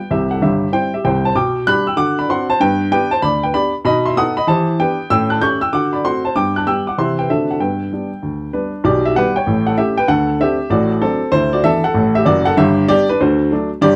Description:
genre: jazz, stride piano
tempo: 192 BPM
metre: 4/4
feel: swing 65% on 8ths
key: G major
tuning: A4 = 441 Hz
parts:
  - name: warm upright piano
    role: solo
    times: 0.0-14.0 s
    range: F#1 to G6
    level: -16 LUFS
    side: equal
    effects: none
room: moderate club reverb, RT60 0.6 s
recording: dark, warm production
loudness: -16 LUFS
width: mono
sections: 0.0-8.8 A section; 8.8-14.0 B section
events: none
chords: 0.1 C; 1.4 G/B; 2.0 D7; 2.6 G; 3.9 B7; 4.5 Em7; 5.1 A7; 5.7 D7; 6.3 G; 7.0 C; 7.3 D7; 7.6 G; 8.8 G/B; 9.5 A7; 10.1 D7; 10.7 D7/A; 11.3 D69; 12.6 G; 13.2 D7

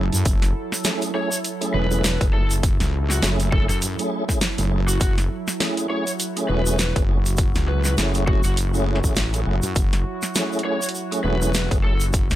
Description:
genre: glitch hop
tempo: 101 BPM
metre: 4/4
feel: swing 57% on 16ths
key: F# minor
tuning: A4 = 440 Hz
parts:
  - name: warbly tape-like pad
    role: sustained chords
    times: 0.0-12.4 s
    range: F#3 to A4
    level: -29 LUFS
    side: right 3 dB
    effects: chorus, built-in reverb, sidechain pumping
  - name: mellow tonewheel organ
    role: stabs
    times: 0.0-11.9 s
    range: A3 to G#4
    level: -27 LUFS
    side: right 1 dB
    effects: chorus vibrato, fast rotary speaker, vintage 12-bit sampler grit, sidechain pumping, ping-pong delay
  - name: wobble bass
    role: bass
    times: 0.0-12.4 s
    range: E1 to F#2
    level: -22 LUFS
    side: equal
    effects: chorus, tube saturation
  - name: dubstep drum kit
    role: drums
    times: 0.1-12.4 s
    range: hi-hat, snare drum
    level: -25 LUFS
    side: equal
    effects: none
  - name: egg shaker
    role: percussion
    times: 0.1-12.4 s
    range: none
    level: -30 LUFS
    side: right 2 dB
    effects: none
  - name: electronic kick drum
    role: drums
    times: 0.3-12.3 s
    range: none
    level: -21 LUFS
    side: equal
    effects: none
  - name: lead guitar through a small cranked amp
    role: melody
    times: 1.1-12.0 s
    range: F#4 to C#5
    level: -29 LUFS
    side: left 1 dB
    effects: overdrive, vintage 12-bit sampler grit, ping-pong delay
room: little or no reverb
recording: none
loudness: -19 LUFS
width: side -14 dB against mid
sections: 0.0-12.4 A section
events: none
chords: 0.0 F#m7

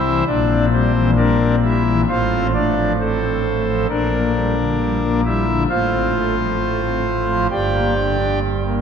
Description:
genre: classical, chorale-style piece for pipe organ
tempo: 66 BPM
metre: 4/4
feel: straight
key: F major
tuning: A4 = 442 Hz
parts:
  - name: pipe organ, foundations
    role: solo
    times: 0.0-8.8 s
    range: G1 to G5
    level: -16 LUFS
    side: left 1 dB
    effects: none
room: wet cathedral reverb, RT60 4.5 s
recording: minimal, uncompressed stereo recording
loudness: -16 LUFS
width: side -7 dB against mid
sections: 0.0-8.8 A section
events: none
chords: 0.3 C7/Bb; 2.1 F/A; 3.9 Gm/Bb; 5.7 F/A; 7.5 Gm

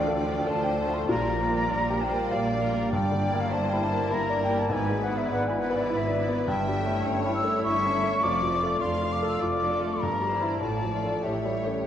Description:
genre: classical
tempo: 101 BPM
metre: 3/4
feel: rubato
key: D minor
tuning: A4 = 440 Hz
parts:
  - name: clear grand piano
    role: melody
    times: 0.0-11.9 s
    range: D2 to B4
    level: -28 LUFS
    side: left 1 dB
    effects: none
  - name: warm studio violin section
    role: melody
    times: 0.0-11.9 s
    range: A4 to D5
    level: -42 LUFS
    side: left 3 dB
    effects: none
  - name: rich studio violin section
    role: second line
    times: 0.0-11.9 s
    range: A4 to F5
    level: -35 LUFS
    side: left 4 dB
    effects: none
  - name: silver concert flute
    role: second line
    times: 0.0-11.9 s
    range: D5 to E6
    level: -29 LUFS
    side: left 1 dB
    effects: none
  - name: rich studio viola section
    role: accompaniment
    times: 0.0-11.9 s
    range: E3 to G4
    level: -34 LUFS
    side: right 1 dB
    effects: none
  - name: rich studio cello section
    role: bass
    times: 0.0-11.8 s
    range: F2 to D3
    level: -34 LUFS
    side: right 2 dB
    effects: none
  - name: warm studio double bass section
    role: bass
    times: 0.0-11.8 s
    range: F1 to D2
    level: -35 LUFS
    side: right 3 dB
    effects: none
room: wet scoring stage reverb, RT60 1.9 s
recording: worn, warbling old tape, cassette tape, warbly pitch drift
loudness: -24 LUFS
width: side -10 dB against mid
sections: 0.0-11.9 A section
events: none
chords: 0.0 Dm; 1.1 Bb6; 2.9 Em7b5/G; 4.7 E7/G#; 6.5 A7/G; 8.2 Dm/F; 10.0 Em7b5/G; 10.6 Dm/A; 11.2 A7

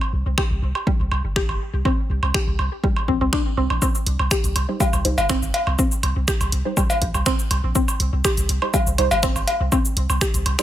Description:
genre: minimal techno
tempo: 122 BPM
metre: 4/4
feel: straight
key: C minor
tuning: A4 = 441 Hz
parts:
  - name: woodblock and cowbell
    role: percussion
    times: 0.0-10.6 s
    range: none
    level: -25 LUFS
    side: right 1 dB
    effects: overdrive, studio reverb, digital delay
  - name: punchy sub bass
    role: bass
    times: 0.1-10.6 s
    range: G1 to C2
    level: -22 LUFS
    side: equal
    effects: sidechain pumping
  - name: mallet-like synth pluck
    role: riff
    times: 0.4-10.2 s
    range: G3 to G4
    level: -26 LUFS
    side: left 1 dB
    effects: chorus, phaser, sidechain pumping, dub echo
  - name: electronic kick drum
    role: drums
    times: 0.4-10.3 s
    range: none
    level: -23 LUFS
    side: equal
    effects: overdrive, studio reverb
  - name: punchy analog drum machine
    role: drums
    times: 0.4-10.6 s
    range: finger snaps, hi-hat, shaker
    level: -26 LUFS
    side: equal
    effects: overdrive, studio reverb
  - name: filtered dub chord stab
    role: stabs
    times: 4.7-10.6 s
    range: G3 to C5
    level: -27 LUFS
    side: right 4 dB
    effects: phaser, analog chorus, digital delay
room: little or no reverb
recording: none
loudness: -18 LUFS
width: side -12 dB against mid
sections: 0.0-10.6 A section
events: none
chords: 0.0 C5

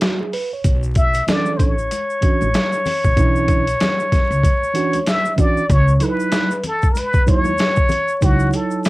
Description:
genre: hip hop, jazz-hop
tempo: 95 BPM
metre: 4/4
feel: swing 58% on 16ths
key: C# phrygian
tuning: A4 = 440 Hz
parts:
  - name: mellow tine electric piano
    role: accompaniment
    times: 0.0-8.9 s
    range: E3 to C#5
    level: -21 LUFS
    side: right 4 dB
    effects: slow stereo tremolo, cassette tape
  - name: boom bap sampler-style drum kit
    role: drums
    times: 0.0-8.9 s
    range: hi-hat, kick drum, snare drum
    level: -18 LUFS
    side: equal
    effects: cassette tape
  - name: upright bass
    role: bass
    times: 0.6-8.5 s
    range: A1 to D#2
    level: -19 LUFS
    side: equal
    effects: none
  - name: tube shaker and congas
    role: percussion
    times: 0.7-8.9 s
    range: none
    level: -31 LUFS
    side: left 4 dB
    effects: none
  - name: trumpet with plunger mute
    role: melody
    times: 1.0-8.9 s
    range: F#4 to E5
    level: -20 LUFS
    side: left 1 dB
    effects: cassette tape
room: little or no reverb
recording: home recording on cassette, vinyl crackle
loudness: -15 LUFS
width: side -20 dB against mid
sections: 0.0-5.7 A section; 5.7-8.9 B section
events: none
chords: 0.0 C#7sus4; 0.6 Bm11; 5.7 C#m11

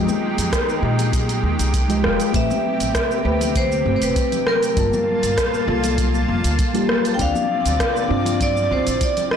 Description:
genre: sunset chillout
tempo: 99 BPM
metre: 4/4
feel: straight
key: unclear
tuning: A4 = 442 Hz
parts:
  - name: mellow FM electric piano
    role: accompaniment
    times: 0.0-9.3 s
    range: G3 to A5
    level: -24 LUFS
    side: moving between left 6 dB and right 5 dB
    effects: chorus, phaser, auto-pan, digital delay
  - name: lush unison pad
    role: sustained chords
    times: 0.0-9.4 s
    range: Bb2 to A5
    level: -26 LUFS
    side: right 1 dB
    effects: chorus
  - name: upright bass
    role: bass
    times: 0.0-9.0 s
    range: E1 to Bb2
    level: -23 LUFS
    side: equal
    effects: none
  - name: smooth R&B drum kit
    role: drums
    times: 0.1-9.4 s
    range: hi-hat, rim click, shaker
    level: -24 LUFS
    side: right 1 dB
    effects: soft clipping on snare
  - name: congas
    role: percussion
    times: 0.1-9.3 s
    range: none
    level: -30 LUFS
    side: left 2 dB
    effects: none
  - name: electronic kick drum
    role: drums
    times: 0.5-9.1 s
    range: none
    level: -23 LUFS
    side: equal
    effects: overdrive
  - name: vibraphone with hard mallets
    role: melody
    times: 2.4-9.4 s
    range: Bb4 to G5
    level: -22 LUFS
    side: equal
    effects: digital delay
room: light reverb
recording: blown-out, overdriven recording, overdrive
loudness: -17 LUFS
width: side -8 dB against mid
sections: 0.0-9.4 A section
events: none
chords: 0.0 Fm9; 2.3 Am9; 4.8 Gm9; 7.2 Dm9

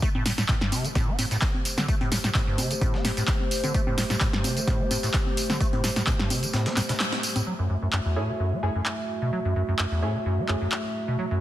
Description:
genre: acid house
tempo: 129 BPM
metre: 4/4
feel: swing 53% on 16ths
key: unclear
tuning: A4 = 439 Hz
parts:
  - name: dark analog pad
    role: sustained chords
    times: 0.9-11.4 s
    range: A3 to E5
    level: -32 LUFS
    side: equal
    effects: wide subtle chorus, sidechain pumping
  - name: acid bass, square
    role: riff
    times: 0.0-11.4 s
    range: E2 to C4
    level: -28 LUFS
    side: equal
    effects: analog chorus, tape echo
  - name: breakbeat sampler-style drum kit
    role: drums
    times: 0.0-7.4 s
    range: hi-hat, snare drum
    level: -38 LUFS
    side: right 1 dB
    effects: none
  - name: electronic kick drum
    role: drums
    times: 0.0-6.2 s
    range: none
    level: -26 LUFS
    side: equal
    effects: overdrive
  - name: punchy analog drum machine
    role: drums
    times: 0.0-10.8 s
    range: congas, handclaps, hi-hat, snare drum, tambourine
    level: -28 LUFS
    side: equal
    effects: overdrive
  - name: band-passed chord stab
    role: stabs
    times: 8.2-10.6 s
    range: A3 to G#4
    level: -34 LUFS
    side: right 1 dB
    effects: wide subtle chorus, tape echo
room: moderate lush hall reverb, RT60 1.7 s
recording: dense, heavily limited modern master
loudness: -23 LUFS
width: side -13 dB against mid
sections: 0.0-7.5 A section; 7.5-11.4 B section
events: filter sweep on acid bass 0.0-7.5; kick drops out 6.5-7.5; band accent 7.0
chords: 0.0 Am7; 7.5 F#m7

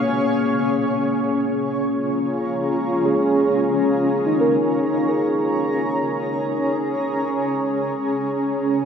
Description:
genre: ambient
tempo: free time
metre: none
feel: none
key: unclear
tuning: A4 = 441 Hz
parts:
  - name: granular cloud pad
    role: sustained chords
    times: 0.0-8.9 s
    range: C#4 to A#5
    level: -20 LUFS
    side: equal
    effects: built-in reverb
  - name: muted felt-like synth keys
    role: arpeggios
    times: 0.0-7.2 s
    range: A#3 to A#4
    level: -23 LUFS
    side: left 1 dB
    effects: chorus, tape echo
room: wet cathedral reverb, RT60 5.4 s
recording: in a vast, echoing space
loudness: -18 LUFS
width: side -7 dB against mid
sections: 0.1-8.9 A section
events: filter sweep on ambient pad 0.1-8.9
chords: 0.1 A#m7; 7.2 N.C.

